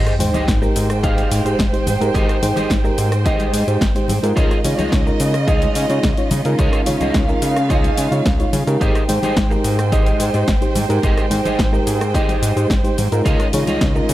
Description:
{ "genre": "nu-disco, nu disco", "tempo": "108 BPM", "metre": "4/4", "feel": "straight", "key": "Ab major", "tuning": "A4 = 440 Hz", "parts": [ { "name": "rich chamber string section", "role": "sustained chords", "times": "0.0-14.1 s", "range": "Ab3 to G5", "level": "-25 LUFS", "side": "right 3 dB", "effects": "vintage 12-bit sampler grit, sidechain pumping" }, { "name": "electric guitar at the edge of break-up", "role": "riff", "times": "0.0-14.1 s", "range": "F4 to F5", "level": "-26 LUFS", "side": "right 1 dB", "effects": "ensemble chorus, analog delay" }, { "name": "fat analog bass", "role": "bass", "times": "0.0-14.1 s", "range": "Ab1 to Db3", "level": "-20 LUFS", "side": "equal", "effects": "none" }, { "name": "sub drop", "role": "sound effects", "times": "0.0-2.1 s", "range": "none", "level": "-26 LUFS", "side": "equal", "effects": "none" }, { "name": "house drum kit", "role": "drums", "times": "0.1-14.1 s", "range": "hi-hat, rim click, shaker, snare drum", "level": "-25 LUFS", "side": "left 1 dB", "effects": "studio reverb" }, { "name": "reed electric piano", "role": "accompaniment", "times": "0.2-14.1 s", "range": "Ab3 to G5", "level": "-22 LUFS", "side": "equal", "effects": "fast tremolo, analog delay" }, { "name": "congas", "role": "percussion", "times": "0.2-13.8 s", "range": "none", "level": "-27 LUFS", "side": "left 2 dB", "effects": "none" }, { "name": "electronic kick drum", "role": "drums", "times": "0.5-13.9 s", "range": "none", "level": "-19 LUFS", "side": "equal", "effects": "studio reverb" } ], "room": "light reverb", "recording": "none", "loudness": "-15 LUFS", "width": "side -14 dB against mid", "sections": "0.0-14.1 A section", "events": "impact 0.0-2.1", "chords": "0.0 Abmaj7; 4.4 Dbadd9; 8.8 Abmaj7; 13.3 Dbadd9" }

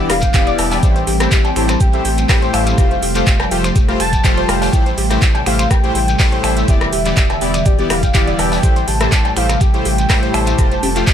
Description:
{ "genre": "progressive house", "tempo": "123 BPM", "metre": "4/4", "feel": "straight", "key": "A minor", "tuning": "A4 = 439 Hz", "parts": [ { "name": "airy breathy pad", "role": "sustained chords", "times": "0.0-11.1 s", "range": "C3 to D4", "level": "-24 LUFS", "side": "right 2 dB", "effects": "chorus, sidechain pumping" }, { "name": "soft supersaw", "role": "stabs", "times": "0.0-11.0 s", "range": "A2 to D5", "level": "-21 LUFS", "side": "left 3 dB", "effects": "sidechain pumping, ping-pong delay" }, { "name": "round analog bass", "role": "bass", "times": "0.0-11.1 s", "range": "E1 to A1", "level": "-21 LUFS", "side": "equal", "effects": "sidechain pumping" }, { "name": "warm velvety synth lead", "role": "melody", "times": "0.1-11.1 s", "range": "D5 to A5", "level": "-22 LUFS", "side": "equal", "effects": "chorus, ping-pong delay" }, { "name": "soft round pluck", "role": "arpeggios", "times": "0.1-11.1 s", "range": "G4 to G6", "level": "-24 LUFS", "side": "left 1 dB", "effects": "lush chorus, vintage 12-bit sampler grit, sidechain pumping, ping-pong delay" }, { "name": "dusty soul sampler-style drum kit", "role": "drums", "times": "0.1-11.1 s", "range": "hi-hat, shaker, snare drum", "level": "-32 LUFS", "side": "right 1 dB", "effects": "none" }, { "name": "house drum kit", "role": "drums", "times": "0.1-11.1 s", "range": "finger snaps, handclaps, hi-hat", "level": "-22 LUFS", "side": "right 1 dB", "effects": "small room ambience" }, { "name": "electronic rim click, cowbell and congas", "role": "percussion", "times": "0.1-10.9 s", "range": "none", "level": "-23 LUFS", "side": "left 3 dB", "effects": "sidechain pumping on snare, small room ambience, sidechain pumping on perc" }, { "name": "electronic kick drum", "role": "drums", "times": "0.2-11.1 s", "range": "none", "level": "-14 LUFS", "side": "equal", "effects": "small room ambience" }, { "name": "shekere", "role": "percussion", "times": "0.2-11.1 s", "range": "none", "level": "-30 LUFS", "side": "left 4 dB", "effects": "none" } ], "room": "little or no reverb", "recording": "none", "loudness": "-12 LUFS", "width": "side -9 dB against mid", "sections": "0.0-11.1 A section", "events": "none", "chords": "0.0 Em7; 0.8 Am7; 2.8 Fadd9; 4.7 Am7; 6.7 Em7; 8.6 Am7; 10.6 Fadd9" }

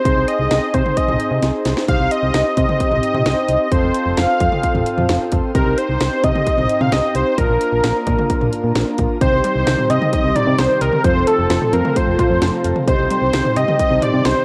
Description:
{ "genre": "synth-pop", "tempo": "131 BPM", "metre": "4/4", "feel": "straight", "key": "C minor", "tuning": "A4 = 441 Hz", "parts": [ { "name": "unison lead", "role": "melody", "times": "0.0-14.4 s", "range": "A4 to F5", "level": "-21 LUFS", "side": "equal", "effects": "cassette tape, analog delay, shimmer reverb" }, { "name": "analog synth brass", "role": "accompaniment", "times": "0.1-14.4 s", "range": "Bb3 to C5", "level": "-24 LUFS", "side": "equal", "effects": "chorus, shimmer reverb" }, { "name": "solid FM bass", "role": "bass", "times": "0.1-14.3 s", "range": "F1 to C3", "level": "-22 LUFS", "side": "equal", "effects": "none" }, { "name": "house drum kit", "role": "drums", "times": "0.1-14.4 s", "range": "hi-hat, kick drum, snare drum, toms", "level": "-23 LUFS", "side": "equal", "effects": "cassette tape" }, { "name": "soft string machine", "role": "sustained chords", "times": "9.8-14.4 s", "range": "C3 to A4", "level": "-28 LUFS", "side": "equal", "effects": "none" }, { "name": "unison pluck", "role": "arpeggios", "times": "9.2-14.4 s", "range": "Eb3 to F5", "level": "-29 LUFS", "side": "equal", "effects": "none" } ], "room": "moderate spring reverb, RT60 1.2 s", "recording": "home recording on cassette", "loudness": "-17 LUFS", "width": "mono", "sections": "0.0-9.2 A section; 9.2-14.4 B section", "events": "drum fill 1.4-1.9", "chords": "0.1 Ab/C; 1.9 Cm; 3.7 F; 5.5 Cm; 7.4 Bb; 9.2 Cm; 11.0 F; 12.9 Cm" }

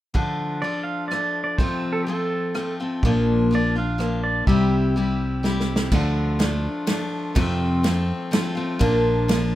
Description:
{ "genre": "folk rock and heartland rock", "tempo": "125 BPM", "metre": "3/4", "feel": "straight", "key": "D minor", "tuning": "A4 = 440 Hz", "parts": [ { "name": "picked steel-string acoustic guitar", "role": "accompaniment", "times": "0.1-9.6 s", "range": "F2 to G4", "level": "-23 LUFS", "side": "left 2 dB", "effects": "none" }, { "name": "natural country drum kit", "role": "drums", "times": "0.1-9.4 s", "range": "crash cymbal, kick drum, ride cymbal, rim click, snare drum", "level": "-24 LUFS", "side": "right 1 dB", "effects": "none" }, { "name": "pedal steel guitar", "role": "melody", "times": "0.6-5.6 s", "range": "A4 to F5", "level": "-27 LUFS", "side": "right 2 dB", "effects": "none" }, { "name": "fingered electric bass", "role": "bass", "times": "3.0-9.6 s", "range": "Bb1 to F2", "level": "-23 LUFS", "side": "right 1 dB", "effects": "none" } ], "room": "small room ambience", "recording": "rough home demo mix", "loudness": "-20 LUFS", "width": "side -14 dB against mid", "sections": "0.1-5.9 A section; 5.9-9.6 B section", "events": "drum fill 5.4-5.9", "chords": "0.1 Dm; 1.6 F; 3.0 Bb; 4.5 C; 5.9 Dm; 7.4 F; 8.8 Bb" }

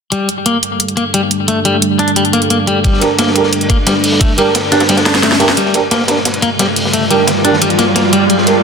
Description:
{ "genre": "dark technical drum and bass", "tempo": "176 BPM", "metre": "4/4", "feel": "straight", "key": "G minor", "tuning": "A4 = 440 Hz", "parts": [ { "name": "dark analog pad", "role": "sustained chords", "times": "0.3-8.6 s", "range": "G3 to A4", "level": "-18 LUFS", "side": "right 2 dB", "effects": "chorus, sidechain pumping" }, { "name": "clean electric guitar", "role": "arpeggios", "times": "0.1-8.5 s", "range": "G3 to D4", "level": "-15 LUFS", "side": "left 3 dB", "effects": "sidechain pumping, low-pass filter, ping-pong delay" }, { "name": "drum and bass drum kit", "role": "drums", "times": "0.1-8.5 s", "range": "hi-hat, snare drum", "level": "-16 LUFS", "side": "right 1 dB", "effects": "overdrive" }, { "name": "crunchy breakbeat drum kit", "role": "drums", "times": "2.8-8.6 s", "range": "hi-hat, ride cymbal, snare drum", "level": "-18 LUFS", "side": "equal", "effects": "high-pass filter on cymbals, high-pass filter on hats, high-pass filter on snare, high-pass filter on room" }, { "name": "electronic kick drum", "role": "drums", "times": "2.8-4.3 s", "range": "none", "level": "-13 LUFS", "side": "equal", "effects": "none" }, { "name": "mellow brass ensemble", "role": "stabs", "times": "3.0-8.5 s", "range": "D4 to Bb4", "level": "-16 LUFS", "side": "right 4 dB", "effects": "low-pass filter, ping-pong delay" }, { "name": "riser", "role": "sound effects", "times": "6.4-8.6 s", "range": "none", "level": "-19 LUFS", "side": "left 1 dB", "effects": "none" }, { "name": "ethereal airy pad", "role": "texture", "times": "6.1-8.6 s", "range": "G3 to D5", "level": "-16 LUFS", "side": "right 2 dB", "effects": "ensemble chorus, built-in reverb, sidechain pumping" } ], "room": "moderate digital room reverb, RT60 1.1 s, studio ambience", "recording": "dense, heavily limited modern master", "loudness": "-10 LUFS", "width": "side -5 dB against mid", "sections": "0.1-5.6 A section; 5.6-8.6 B section", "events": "kick drops out 4.9-5.6; drum fill 5.1-5.6; build-up 5.6-8.6; filter sweep on analog synth pad 5.6-8.6; riser 6.4-8.6", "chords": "0.1 Gm" }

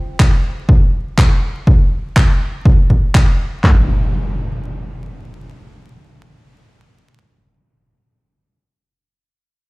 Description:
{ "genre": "deep house", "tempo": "122 BPM", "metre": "4/4", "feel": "swing 55% on 16ths", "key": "none", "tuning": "none", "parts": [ { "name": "electronic handclaps", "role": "drums", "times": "0.2-3.3 s", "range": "none", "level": "-22 LUFS", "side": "equal", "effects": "overdrive" }, { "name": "punchy analog drum machine", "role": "drums", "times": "0.2-3.8 s", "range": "handclaps, kick drum, toms", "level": "-11 LUFS", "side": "equal", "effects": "none" }, { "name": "impact", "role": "sound effects", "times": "3.6-8.4 s", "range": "none", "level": "-20 LUFS", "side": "equal", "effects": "none" } ], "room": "little or no reverb", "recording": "played on a big sound system in a bare room, large studio reverb, vinyl crackle", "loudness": "-12 LUFS", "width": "side -25 dB against mid", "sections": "0.0-3.6 A section; 3.6-7.6 B section", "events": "none", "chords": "none" }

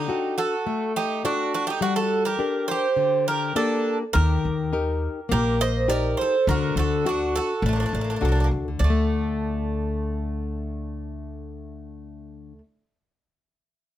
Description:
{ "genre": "greek folk, Greek bouzouki band", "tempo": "103 BPM", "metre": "4/4", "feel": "straight", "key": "D phrygian dominant", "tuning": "A4 = 440 Hz", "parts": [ { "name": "Greek bouzouki", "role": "melody", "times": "0.0-12.6 s", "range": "D4 to Eb5", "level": "-26 LUFS", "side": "right 3 dB", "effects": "none" }, { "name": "Greek bouzouki", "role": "second line", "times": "0.0-12.6 s", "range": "A3 to C5", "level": "-31 LUFS", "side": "right 4 dB", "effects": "none" }, { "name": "nylon-string guitar", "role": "accompaniment", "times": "0.0-12.6 s", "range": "D3 to Bb4", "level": "-27 LUFS", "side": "left 5 dB", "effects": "none" }, { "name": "upright bass", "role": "bass", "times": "4.2-12.6 s", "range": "A1 to Eb2", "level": "-25 LUFS", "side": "equal", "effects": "none" } ], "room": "light reverb", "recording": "none", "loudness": "-21 LUFS", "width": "side -12 dB against mid", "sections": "0.0-8.8 A section; 8.8-11.1 B section", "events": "none", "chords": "0.0 D; 1.8 Gm; 4.2 Eb; 6.5 D; 8.8 D5" }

